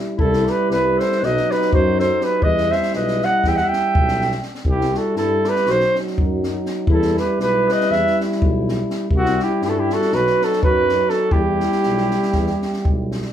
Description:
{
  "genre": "balkan folk, Balkan brass band",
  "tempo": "242 BPM (eighths)",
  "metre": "9/8",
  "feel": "straight",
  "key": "E harmonic minor",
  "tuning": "A4 = 441 Hz",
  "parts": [
    { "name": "dark euphonium", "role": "accompaniment", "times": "0.0-13.3 s", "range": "F#3 to G3", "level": "-25 LUFS", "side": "right 3 dB", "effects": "none" },
    { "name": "warm French horn", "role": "accompaniment", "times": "0.0-13.3 s", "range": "D#4 to E4", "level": "-27 LUFS", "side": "left 7 dB", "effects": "none" },
    { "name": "mellow flugelhorn", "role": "melody", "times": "0.2-13.1 s", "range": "F#4 to G5", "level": "-19 LUFS", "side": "right 2 dB", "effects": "none" },
    { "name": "mellow clarinet", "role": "second line", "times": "0.2-13.1 s", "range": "C4 to E5", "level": "-27 LUFS", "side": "left 6 dB", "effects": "none" },
    { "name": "mellow tuba", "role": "bass", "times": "0.2-13.3 s", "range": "B1 to G2", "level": "-25 LUFS", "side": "equal", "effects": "none" },
    { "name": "compact cocktail drum kit", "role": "percussion", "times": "0.2-13.3 s", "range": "kick drum, snare drum", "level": "-24 LUFS", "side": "equal", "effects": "none" }
  ],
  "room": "light reverb",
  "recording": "band playing live in one room",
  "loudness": "-16 LUFS",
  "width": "side -10 dB against mid",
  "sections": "0.0-13.3 A section",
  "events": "none",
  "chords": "0.2 C; 1.2 B; 2.4 Em; 4.6 C; 5.6 B; 6.9 Em; 9.1 C; 10.1 B; 11.3 Em"
}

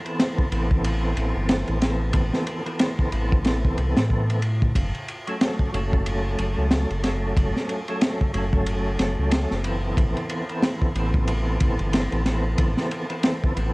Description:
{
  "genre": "trip hop",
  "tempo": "92 BPM",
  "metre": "4/4",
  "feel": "swing 59% on 16ths",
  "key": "unclear",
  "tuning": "A4 = 440 Hz",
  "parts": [
    { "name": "overdriven tonewheel organ", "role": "accompaniment", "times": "0.0-13.7 s", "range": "E3 to A4", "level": "-28 LUFS", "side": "equal", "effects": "chorus vibrato, stopped rotary speaker, tremolo, cassette tape, tape echo" },
    { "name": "crunchy breakbeat drum kit", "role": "drums", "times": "0.1-13.7 s", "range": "kick drum, ride cymbal, snare drum", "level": "-24 LUFS", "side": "equal", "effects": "none" },
    { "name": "round analog bass", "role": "bass", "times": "0.5-13.7 s", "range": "F#1 to A2", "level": "-24 LUFS", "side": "equal", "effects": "tube saturation" }
  ],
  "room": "light reverb",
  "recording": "home recording on cassette",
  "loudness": "-21 LUFS",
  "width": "side -23 dB against mid",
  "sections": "0.0-13.7 A section",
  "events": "none",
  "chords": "0.0 Amadd9; 4.8 F#m; 10.0 Amadd9"
}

